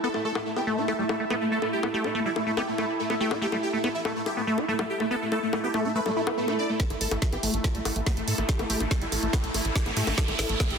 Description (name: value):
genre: psychedelic trance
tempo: 142 BPM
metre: 4/4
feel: straight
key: unclear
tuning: A4 = 440 Hz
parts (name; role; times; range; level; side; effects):
- dense compressed supersaw; melody; 0.0-10.8 s; A3 to D5; -30 LUFS; right 1 dB; phaser, sidechain pumping, tape echo
- bubbling stepped-filter texture; sustained chords; 0.0-10.8 s; E4; -34 LUFS; equal; chorus, built-in reverb, vintage 12-bit sampler grit, sidechain pumping
- liquid acid bass; riff; 0.0-10.6 s; G3 to E4; -31 LUFS; equal; chorus, auto-pan, sidechain pumping, tape echo
- ethereal airy pad; texture; 0.0-10.8 s; E4 to B5; -37 LUFS; right 2 dB; ensemble chorus, built-in reverb, sidechain pumping
- drum and bass drum kit; drums; 0.1-10.8 s; bongos, hi-hat, snare drum; -31 LUFS; left 3 dB; low-pass filter on perc, soft clipping on snare, low-pass filter on snare, low-pass filter on hats, low-pass filter on room
- swell and riser; sound effects; 6.1-10.8 s; none; -34 LUFS; right 3 dB; none
- electronic kick drum; drums; 6.8-10.7 s; none; -26 LUFS; equal; none
- tight sequencer bass; bass; 6.9-10.8 s; A1 to A2; -31 LUFS; equal; none
room: moderate lush hall reverb, RT60 2.4 s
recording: dense, heavily limited modern master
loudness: -24 LUFS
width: side -6 dB against mid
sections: 0.0-6.8 A section; 6.8-10.8 B section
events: filter sweep on acid bass 0.0-6.8, 6.8-10.8; swell 6.1-6.8; build-up 6.8-10.8; drum fill 6.8-10.8; riser 6.8-10.8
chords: 0.0 A5